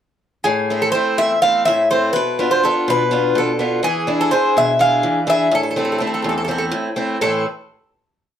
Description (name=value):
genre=greek folk, Greek bouzouki band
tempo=248 BPM (eighths)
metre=7/8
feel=straight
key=A harmonic minor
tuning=A4 = 440 Hz
part: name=Greek bouzouki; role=melody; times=0.4-7.4 s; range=G#4 to F5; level=-17 LUFS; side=equal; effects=none
part: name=picked acoustic archtop guitar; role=accompaniment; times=0.5-7.5 s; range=E2 to G#4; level=-19 LUFS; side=equal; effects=none
room=moderate studio reverb, RT60 0.7 s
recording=none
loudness=-15 LUFS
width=side -9 dB against mid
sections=0.5-7.2 A section; 7.2-8.4 final chord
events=none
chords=0.5 Am; 2.1 Bdim; 3.8 E7; 5.5 Am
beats=| 0.46 0.70 0.94 1.18 1.42 1.67 1.91 | 2.15 2.39 2.63 2.87 3.12 3.36 3.60 | 3.84 4.08 4.32 4.56 4.81 5.05 5.29 | 5.53 5.77 6.01 6.26 6.50 6.74 6.98 | 7.22